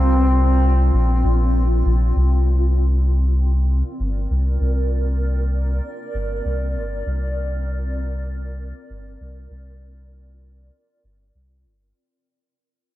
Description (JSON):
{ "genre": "ambient dub", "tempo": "98 BPM", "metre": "4/4", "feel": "swing 55% on 16ths", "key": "unclear", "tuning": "A4 = 440 Hz", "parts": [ { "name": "warm trombone", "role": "melody", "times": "0.0-0.9 s", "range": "C4", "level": "-26 LUFS", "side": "left 1 dB", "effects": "dub echo" }, { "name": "granular cloud pad", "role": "sustained chords", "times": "0.0-12.0 s", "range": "C4 to D5", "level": "-27 LUFS", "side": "equal", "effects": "built-in reverb" }, { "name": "soft dub sub bass", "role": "bass", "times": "0.0-11.9 s", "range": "G1 to C2", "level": "-18 LUFS", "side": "equal", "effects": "none" } ], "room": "light reverb, small room ambience", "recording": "echo-heavy mix", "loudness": "-17 LUFS", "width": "side -15 dB against mid", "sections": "0.0-2.2 A section; 2.2-12.0 B section", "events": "fade-out 2.2-12.0", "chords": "0.0 C5", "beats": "0.32 0.93 1.54 | 2.16 2.77 3.38 3.99 | 4.61 5.22 5.83 6.44 | 7.05 7.67 8.28 8.89 | 9.50 10.12 10.73 11.34" }